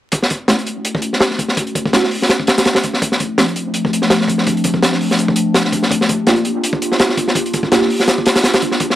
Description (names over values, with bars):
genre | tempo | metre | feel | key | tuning
drum and bass, jungle | 166 BPM | 4/4 | swing 54% on 16ths | unclear | A4 = 440 Hz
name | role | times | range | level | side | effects
warbly tape-like pad | sustained chords | 0.7-9.0 s | F3 to G4 | -19 LUFS | left 1 dB | chorus, built-in reverb, vintage 12-bit sampler grit
crunchy breakbeat drum kit | drums | 0.1-9.0 s | hi-hat, kick drum, snare drum | -15 LUFS | equal | high-pass filter on kick, high-pass filter on hats, high-pass filter on snare, high-pass filter on room
deep mellow chord stab | stabs | 0.5-3.5, 6.3-7.9 s | F3 to G4 | -19 LUFS | right 1 dB | chorus, dub echo
room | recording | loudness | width
light reverb, small room ambience | dry, gritty hardware recording, transformer saturation, vinyl crackle | -13 LUFS | side -13 dB against mid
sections
0.1-9.0 A section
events
filter sweep on ambient pad 0.1-9.0; filter sweep on synth stab 0.1-9.0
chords
0.1 F#m7; 3.0 Dm7; 5.9 Gm7